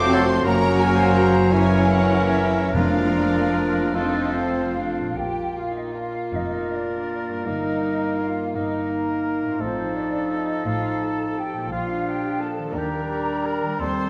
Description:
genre	classical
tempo	47-60 BPM (dotted quarters)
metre	6/8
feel	rubato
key	Bb major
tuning	A4 = 440 Hz
part	warm studio violin section	melody	0.0-13.7 s	Eb4 to D6	-36 LUFS	equal	none
part	clear studio violin section	second line	0.0-13.7 s	Bb3 to F5	-38 LUFS	equal	none
part	flute section	second line	0.0-14.1 s	C5 to D6	-33 LUFS	equal	none
part	rich chamber viola section	accompaniment	0.0-14.1 s	Bb3 to C5	-33 LUFS	equal	none
part	clear trombone section	sustained chords	0.0-4.8 s	Db3 to Bb3	-34 LUFS	equal	none
part	mellow French horn section	sustained chords	0.0-14.1 s	F3 to Gb4	-32 LUFS	equal	none
part	concert harp	arpeggios	0.0-14.1 s	F2 to Eb5	-36 LUFS	equal	none
part	bright trumpet section	stabs	0.0-4.8 s	Bb4 to Db5	-32 LUFS	equal	none
part	clear chamber cello section	bass	0.0-14.1 s	Eb2 to Bb2	-29 LUFS	equal	none
part	rich chamber double bass section	bass	0.0-14.1 s	F1 to Eb2	-33 LUFS	equal	none
part	clear oboe	second line	0.1-14.1 s	F4 to Bb4	-33 LUFS	equal	none
part	mellow clarinet	second line	0.1-14.1 s	C4 to F4	-30 LUFS	equal	none
part	clear bassoon	accompaniment	0.1-14.1 s	Fb3 to Bb3	-32 LUFS	equal	none
part	timpani	percussion	2.7-3.9 s	F2	-28 LUFS	equal	none
room	wet recital hall reverb, RT60 1.6 s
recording	nothing above 10.6 kHz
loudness	-22 LUFS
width	mono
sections	0.0-5.2 A section; 5.2-14.1 B section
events	none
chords	0.5 Gb; 1.5 Gb7; 2.7 Bb/F; 3.9 F; 5.2 Bb; 7.5 Eb/G; 9.6 F7/A; 11.7 Bb; 12.7 Ebmaj7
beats	| 0.45 1.51 | 2.73 3.94 | 5.16 6.33 | 7.46 8.55 | 9.60 10.64 | 11.70 12.74 | 13.80

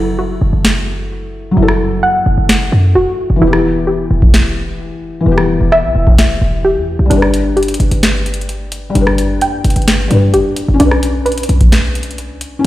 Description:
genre	hip hop, trap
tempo	130 BPM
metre	4/4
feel	half-time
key	unclear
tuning	A4 = 440 Hz
part	felt-muted upright piano	accompaniment	0.0-12.7 s	E3 to B4	-17 LUFS	left 3 dB	none
part	soft round pluck	arpeggios	0.0-12.7 s	D4 to G5	-16 LUFS	equal	chorus, ping-pong delay
part	short 808-style bass	bass	0.0-12.6 s	E1 to G2	-15 LUFS	equal	none
part	booming analog drum machine	drums	0.6-12.5 s	hi-hat, kick drum, rim click, snare drum	-14 LUFS	equal	none
room	light reverb, digital ambience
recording	played on a big sound system in a bare room, stone room reverb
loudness	-10 LUFS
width	side -15 dB against mid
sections	0.0-12.7 A section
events	break 0.0-7.1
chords	0.0 F#m7; 3.4 Em; 7.1 G; 10.8 Bmadd9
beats	0.18 0.65 1.11 | 1.57 2.03 2.49 2.95 | 3.42 3.88 4.34 4.80 | 5.26 5.72 6.18 6.65 | 7.11 7.57 8.03 8.49 | 8.95 9.41 9.88 10.34 | 10.80 11.26 11.72 12.18 | 12.65

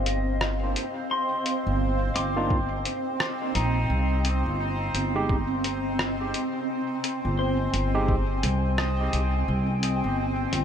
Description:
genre	ambient dub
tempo	86 BPM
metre	4/4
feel	swing 60% on 16ths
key	unclear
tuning	A4 = 442 Hz
part	granular cloud pad	sustained chords	0.0-10.6 s	C4 to Ab5	-30 LUFS	equal	built-in reverb
part	pedal steel guitar	arpeggios	0.0-10.6 s	C4 to D6	-32 LUFS	left 1 dB	dub echo
part	upright bass	bass	0.0-10.6 s	G1 to C2	-26 LUFS	equal	none
part	bubbling stepped-filter texture	texture	0.0-10.6 s	C4 to C5	-35 LUFS	right 2 dB	chorus, built-in reverb
part	lo-fi sampler-style drum kit	drums	0.1-10.6 s	hi-hat, rim click	-30 LUFS	left 1 dB	none
part	overdriven tine electric piano	stabs	2.4-8.1 s	Ab3 to G4	-35 LUFS	right 2 dB	dub echo
part	electronic kick drum	drums	2.5-8.3 s	none	-26 LUFS	equal	none
room	light reverb, digital ambience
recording	none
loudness	-24 LUFS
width	side -8 dB against mid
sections	0.0-10.6 A section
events	none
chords	0.0 Cm11; 3.9 Fm7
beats	0.41 | 1.11 1.81 2.50 3.20 | 3.90 4.60 5.29 5.99 | 6.69 7.39 8.09 8.78 | 9.48 10.18

